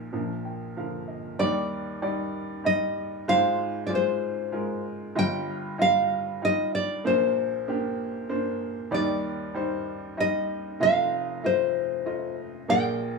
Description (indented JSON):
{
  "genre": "acoustic folk-pop ballad",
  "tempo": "95 BPM",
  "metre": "3/4",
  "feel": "straight",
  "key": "Eb major",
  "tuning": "A4 = 440 Hz",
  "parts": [
    { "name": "clear upright piano", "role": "accompaniment", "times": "0.0-13.2 s", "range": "F1 to G5", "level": "-29 LUFS", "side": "equal", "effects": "none" },
    { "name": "nylon-string guitar", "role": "melody", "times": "1.4-13.2 s", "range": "C5 to G5", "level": "-25 LUFS", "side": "equal", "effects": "none" }
  ],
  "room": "moderate studio reverb, RT60 0.7 s",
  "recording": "band playing live in one room",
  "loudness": "-24 LUFS",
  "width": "side -3 dB against mid",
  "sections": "0.0-1.4 A section; 1.4-13.2 B section",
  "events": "none",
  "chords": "0.1 Bb; 1.4 Ebmaj7; 3.3 Ab6; 5.1 Ebadd9/G; 7.0 Bbadd9; 8.9 Ebmaj7; 10.8 F7"
}